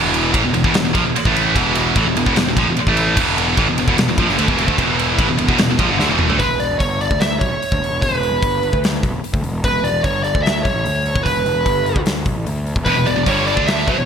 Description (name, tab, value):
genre	hard rock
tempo	148 BPM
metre	4/4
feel	straight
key	unclear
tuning	A4 = 438 Hz
part	heavy high-gain guitar	riff	0.0-6.4, 12.9-14.1 s	E2 to D4	-16 LUFS	right 1 dB	distortion
part	fuzz picked electric bass	bass	0.0-14.1 s	E1 to D2	-22 LUFS	equal	overdrive
part	big rock drum kit	drums	0.1-14.0 s	crash cymbal, hi-hat, kick drum, ride cymbal, snare drum, toms	-20 LUFS	equal	none
part	smooth overdriven lead guitar	melody	6.4-14.1 s	B4 to E5	-19 LUFS	right 1 dB	none
room	light reverb, small room reverb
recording	bright 1980s-style digital production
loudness	-14 LUFS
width	side -7 dB against mid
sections	0.0-6.4 A section; 6.4-14.1 B section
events	drum fill 6.0-6.4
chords	0.0 E5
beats	0.34 0.75 1.15 | 1.55 1.96 2.36 2.77 | 3.17 3.57 3.98 4.38 | 4.78 5.19 5.59 6.00 | 6.40 6.81 7.21 7.62 | 8.02 8.43 8.83 9.24 | 9.64 10.04 10.45 10.85 | 11.26 11.66 12.06 12.47 | 12.87 13.27 13.68